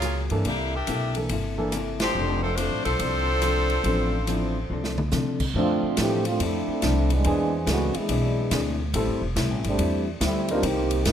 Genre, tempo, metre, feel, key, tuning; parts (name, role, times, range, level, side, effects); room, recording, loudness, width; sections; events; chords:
jazz, big band swing; 141 BPM; 4/4; swing 66% on 8ths; F major; A4 = 440 Hz
clear saxophone section; melody; 0.0-5.1 s; F3 to E5; -26 LUFS; left 1 dB
vintage hollow-body jazz guitar; accompaniment; 0.0-11.1 s; A2 to A4; -31 LUFS; left 4 dB
upright bass; bass; 0.0-11.1 s; E1 to C3; -27 LUFS; equal
swinging big-band drum kit; drums; 0.0-11.1 s; crash cymbal, hi-hat, kick drum, ride cymbal, rim click, snare drum, toms; -31 LUFS; equal
warm grand piano; accompaniment; 0.3-10.6 s; E3 to Bb4; -29 LUFS; right 1 dB
mellow trombone section; second line; 5.6-11.1 s; D3 to Bb4; -26 LUFS; right 2 dB
light reverb; -22 LUFS; side -9 dB against mid
0.0-5.6 A section; 5.6-11.1 B section
band accent 1.9; drum fill 4.7-5.1; trombone section solo 5.6-11.1
0.5 C13; 2.2 F6; 7.3 E7b13; 8.9 Am7